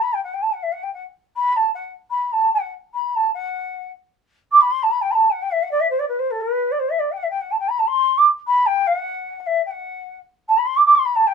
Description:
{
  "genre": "indian classical",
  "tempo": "152 BPM",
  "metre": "4/4",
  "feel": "straight",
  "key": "unclear",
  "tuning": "A4 = 442 Hz",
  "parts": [
    { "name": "mellow bansuri", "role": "solo", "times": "0.0-11.3 s", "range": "A4 to D6", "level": "-17 LUFS", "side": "right 1 dB", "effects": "none" }
  ],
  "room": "light reverb",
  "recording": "minimal, uncompressed stereo recording",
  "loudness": "-17 LUFS",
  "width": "side -6 dB against mid",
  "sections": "0.0-3.3 A section; 3.3-11.3 B section",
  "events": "speeding up 0.0-11.3",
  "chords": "none"
}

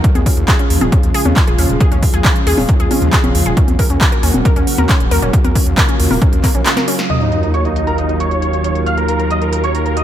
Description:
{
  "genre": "uplifting trance",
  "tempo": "136 BPM",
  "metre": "4/4",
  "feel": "straight",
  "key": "Eb minor",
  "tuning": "A4 = 440 Hz",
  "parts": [
    { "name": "lush unison pad", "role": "sustained chords", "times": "0.0-10.0 s", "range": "Db3 to Gb4", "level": "-20 LUFS", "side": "right 1 dB", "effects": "chorus, sidechain pumping" },
    { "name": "wide unison pluck", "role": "arpeggios", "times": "0.0-7.0 s", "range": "Db4 to Bb4", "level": "-22 LUFS", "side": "left 2 dB", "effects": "sidechain pumping, tape echo" },
    { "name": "big-room dance drum kit", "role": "drums", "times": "0.0-10.0 s", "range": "congas, handclaps, hi-hat, snare drum", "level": "-18 LUFS", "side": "equal", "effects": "low-pass filter on hats, low-pass filter on snare, low-pass filter on perc, low-pass filter on room" },
    { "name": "electronic kick drum", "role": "drums", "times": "0.0-6.5 s", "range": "none", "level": "-13 LUFS", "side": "equal", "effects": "overdrive" },
    { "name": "gritty driven synth bass", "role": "bass", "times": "0.2-10.0 s", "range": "Eb1 to Eb2", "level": "-18 LUFS", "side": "equal", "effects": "distortion, sidechain pumping" },
    { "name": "dense compressed supersaw", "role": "melody", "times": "7.1-10.0 s", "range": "Eb4 to F5", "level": "-19 LUFS", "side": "equal", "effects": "vintage 12-bit sampler grit, sidechain pumping, low-pass filter, tape echo" },
    { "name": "clear grand piano", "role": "second line", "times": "7.1-10.0 s", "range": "Eb5 to F6", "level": "-23 LUFS", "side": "right 2 dB", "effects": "sidechain pumping, low-pass filter, tape echo" },
    { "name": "sub drop", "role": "sound effects", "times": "7.1-8.9 s", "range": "none", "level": "-22 LUFS", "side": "equal", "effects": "none" }
  ],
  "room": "light reverb, digital ambience",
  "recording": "none",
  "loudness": "-11 LUFS",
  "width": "side -11 dB against mid",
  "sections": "0.0-7.1 A section; 7.1-10.0 B section",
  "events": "filter sweep on synth pluck 0.0-7.1; kick drops out 6.7-7.1; drum fill 6.7-7.1; band accent 7.0; impact 7.1-8.9; filter sweep on supersaw synth 7.1-10.0",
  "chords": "0.0 Db/Eb; 3.6 Gb/Eb; 7.1 Ebmadd9"
}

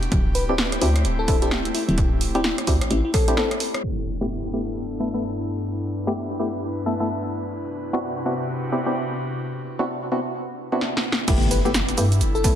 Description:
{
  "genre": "UK garage, two-step garage",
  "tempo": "129 BPM",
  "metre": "4/4",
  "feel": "swing 61% on 16ths",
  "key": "unclear",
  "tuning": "A4 = 440 Hz",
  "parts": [
    { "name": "airy breathy pad", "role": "sustained chords", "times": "0.0-12.6 s", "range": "G2 to B4", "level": "-30 LUFS", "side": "left 1 dB", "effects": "chorus, sidechain pumping" },
    { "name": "hollow knocking FM bass", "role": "bass", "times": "0.0-3.0, 11.3-12.6 s", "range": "D1 to G2", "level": "-22 LUFS", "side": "equal", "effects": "none" },
    { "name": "punchy analog drum machine", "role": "drums", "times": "0.0-3.8, 10.8-12.6 s", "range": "crash cymbal, hi-hat, rim click, shaker, snare drum", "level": "-25 LUFS", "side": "right 1 dB", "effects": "none" },
    { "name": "electronic kick drum", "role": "drums", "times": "0.1-3.3, 11.3-12.6 s", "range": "none", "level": "-22 LUFS", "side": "equal", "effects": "none" },
    { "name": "bell-like FM electric piano", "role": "melody", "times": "0.3-3.7, 11.5-12.6 s", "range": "E4 to B4", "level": "-28 LUFS", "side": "left 3 dB", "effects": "chorus, diffuse ambient delay" },
    { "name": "percussive organ stab", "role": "stabs", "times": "0.5-12.5 s", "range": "A3 to A4", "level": "-26 LUFS", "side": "equal", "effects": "chorus, diffuse ambient delay" },
    { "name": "impact", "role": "sound effects", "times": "3.8-5.7, 11.3-12.6 s", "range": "none", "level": "-30 LUFS", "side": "equal", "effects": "none" }
  ],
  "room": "moderate plate reverb, RT60 2.3 s",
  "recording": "dreamy mix soaked in reverb, low-pass filter",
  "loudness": "-21 LUFS",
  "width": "side -10 dB against mid",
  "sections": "0.0-3.8 A section; 3.8-11.3 B section; 11.3-12.6 C section",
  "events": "drum fill 3.1-3.8, 10.8-11.3; impact 3.8-5.7, 11.3-12.6; filter sweep 3.8-11.3; drop 11.3-12.6",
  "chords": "0.1 D9sus4; 3.8 G69; 7.6 Cmaj9#11; 11.3 G69"
}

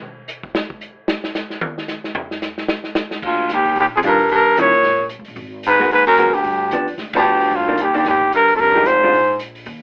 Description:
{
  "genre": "jazz, small-group swing and bop",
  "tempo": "224 BPM",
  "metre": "4/4",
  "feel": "swing 59% on 8ths",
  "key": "Eb major",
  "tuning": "A4 = 440 Hz",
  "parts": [
    { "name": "vintage drum kit", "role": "drums", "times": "0.0-9.7 s", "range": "crash cymbal, hi-hat, kick drum, ride cymbal, snare drum, toms", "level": "-28 LUFS", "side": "equal", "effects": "none" },
    { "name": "upright bass", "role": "bass", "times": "3.2-9.8 s", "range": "F1 to G2", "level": "-37 LUFS", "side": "equal", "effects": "none" },
    { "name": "breathy trumpet", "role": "melody", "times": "3.3-9.4 s", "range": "F4 to Db5", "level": "-17 LUFS", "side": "equal", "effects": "none" },
    { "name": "bright baritone saxophone", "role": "second line", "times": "3.3-9.4 s", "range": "D2 to Bb2", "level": "-22 LUFS", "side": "equal", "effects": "none" },
    { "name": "vintage hollow-body jazz guitar", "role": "accompaniment", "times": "4.0-9.1 s", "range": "Eb3 to Bb4", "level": "-24 LUFS", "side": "equal", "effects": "none" }
  ],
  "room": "moderate studio ambience, RT60 0.5 s",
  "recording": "telephone sound",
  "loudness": "-17 LUFS",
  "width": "mono",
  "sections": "0.0-3.2 A section; 3.2-9.8 B section",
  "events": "drum solo 0.0-3.2; band accent 7.1",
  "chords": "0.0 N.C.; 3.2 Ebmaj9; 4.3 Eb7b9; 5.4 Abm9; 6.4 G7; 7.5 Cm9; 8.6 Fm9; 9.1 Abadd9/Bb"
}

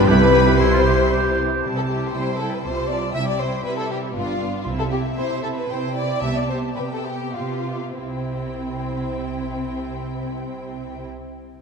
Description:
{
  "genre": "quick classical-period movement for symphony orchestra",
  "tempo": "95-121 BPM",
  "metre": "3/4",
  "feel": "straight",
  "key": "C major",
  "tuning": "A4 = 439 Hz",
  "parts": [
    { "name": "bright clarinet", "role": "second line", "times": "0.0-1.4 s", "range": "E4", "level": "-28 LUFS", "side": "right 1 dB", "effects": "none" },
    { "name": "mellow large flute ensemble", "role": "second line", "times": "0.0-1.4 s", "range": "B4 to C5", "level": "-24 LUFS", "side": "left 8 dB", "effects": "none" },
    { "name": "rich studio violin section", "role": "second line", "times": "0.0-11.1 s", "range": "C4 to E5", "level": "-26 LUFS", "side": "left 2 dB", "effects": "none" },
    { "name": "warm oboe", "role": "second line", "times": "0.0-1.6 s", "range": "E4 to G4", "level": "-26 LUFS", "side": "right 3 dB", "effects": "none" },
    { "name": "rich studio viola section", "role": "accompaniment", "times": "0.0-11.1 s", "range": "G3 to G4", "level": "-29 LUFS", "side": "right 2 dB", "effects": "none" },
    { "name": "mellow French horn section", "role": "sustained chords", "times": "0.0-1.4 s", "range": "G4", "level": "-23 LUFS", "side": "left 5 dB", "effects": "none" },
    { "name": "clear trumpet section", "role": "stabs", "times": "0.0-1.4 s", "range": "B4 to C5", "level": "-27 LUFS", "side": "equal", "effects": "none" },
    { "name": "rich studio cello section", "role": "bass", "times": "0.0-11.1 s", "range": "G2 to C3", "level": "-27 LUFS", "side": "right 2 dB", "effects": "none" },
    { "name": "rich studio double bass section", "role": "bass", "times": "0.0-11.1 s", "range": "G1 to C2", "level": "-26 LUFS", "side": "right 3 dB", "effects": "none" },
    { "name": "rich studio violin section", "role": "melody", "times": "0.1-11.1 s", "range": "D5 to C6", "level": "-33 LUFS", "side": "left 3 dB", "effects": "none" },
    { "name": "timpani", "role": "percussion", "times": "0.1-0.8 s", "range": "C3", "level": "-25 LUFS", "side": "right 2 dB", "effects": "none" }
  ],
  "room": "wet concert hall reverb, RT60 2.6 s",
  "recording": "dark, warm production",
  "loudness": "-20 LUFS",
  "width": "side -5 dB against mid",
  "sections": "0.0-1.6 A section; 1.6-8.0 B section; 8.0-11.6 C section",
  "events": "slowing down 3.9-8.0",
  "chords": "0.1 C; 2.7 G5/C; 3.2 C; 4.1 G7; 4.7 C; 6.2 G7/C; 8.0 C"
}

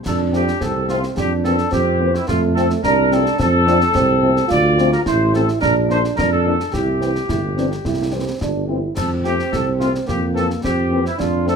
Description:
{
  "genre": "military-style march for wind band",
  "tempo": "108 BPM",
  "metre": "2/4",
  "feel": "straight",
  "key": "F major",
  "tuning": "A4 = 440 Hz",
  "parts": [
    { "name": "mellow trumpet section", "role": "melody", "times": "0.1-11.6 s", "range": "E4 to D5", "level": "-21 LUFS", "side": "left 1 dB", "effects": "none" },
    { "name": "warm euphonium", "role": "second line", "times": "0.1-11.6 s", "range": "A3 to F4", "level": "-21 LUFS", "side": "right 4 dB", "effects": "none" },
    { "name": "mellow tuba", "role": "bass", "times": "0.1-11.6 s", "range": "G1 to F2", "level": "-20 LUFS", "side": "right 1 dB", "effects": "none" },
    { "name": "concert snare drum, clash cymbals and concert bass drum", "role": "drums", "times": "0.1-11.6 s", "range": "none", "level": "-28 LUFS", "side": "left 1 dB", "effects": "none" },
    { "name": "dark French horn section", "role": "accompaniment", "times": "0.3-11.6 s", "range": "E3 to D4", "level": "-24 LUFS", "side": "left 6 dB", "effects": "none" }
  ],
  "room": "light reverb",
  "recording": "none",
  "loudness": "-15 LUFS",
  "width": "side -6 dB against mid",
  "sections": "0.1-11.6 A section",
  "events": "none",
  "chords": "0.1 F; 1.2 C7/F; 2.3 F; 4.5 Dm7; 5.6 Bb; 6.7 C; 9.0 F; 10.1 C7/F"
}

